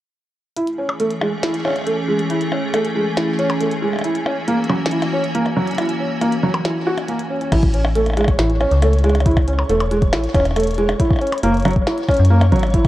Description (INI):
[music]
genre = IDM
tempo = 138 BPM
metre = 4/4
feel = straight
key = unclear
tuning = A4 = 440 Hz
[part]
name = icy glass pad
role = sustained chords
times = 0.9-7.5 s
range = E3 to G#4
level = -24 LUFS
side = left 1 dB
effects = chorus, built-in reverb, sidechain pumping
[part]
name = felt-muted upright piano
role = arpeggios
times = 0.6-12.8 s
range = F#3 to F#4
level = -19 LUFS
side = right 1 dB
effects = low-pass filter, digital delay
[part]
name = glitchy drum kit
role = drums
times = 0.6-12.9 s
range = crash cymbal, hi-hat, percussion blips, snare drum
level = -26 LUFS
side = left 1 dB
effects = none
[part]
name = flickering grainy texture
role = texture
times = 1.0-12.9 s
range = C#5 to G#5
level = -30 LUFS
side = left 1 dB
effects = built-in reverb
[part]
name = metallic FM bass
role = bass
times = 7.5-12.9 s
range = E1 to F#2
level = -17 LUFS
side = equal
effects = none
[part]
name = electronic kick drum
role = drums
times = 7.5-12.9 s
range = none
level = -17 LUFS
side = equal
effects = none
[sound]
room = light reverb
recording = worn, warbling old tape, cassette tape, warbly pitch drift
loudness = -16 LUFS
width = side -15 dB against mid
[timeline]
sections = 0.6-7.5 A section; 7.5-12.9 B section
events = filter sweep on felt piano 0.6-7.5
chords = 0.6 Amaj7; 4.0 F#7; 7.5 A; 11.0 F#7(no3)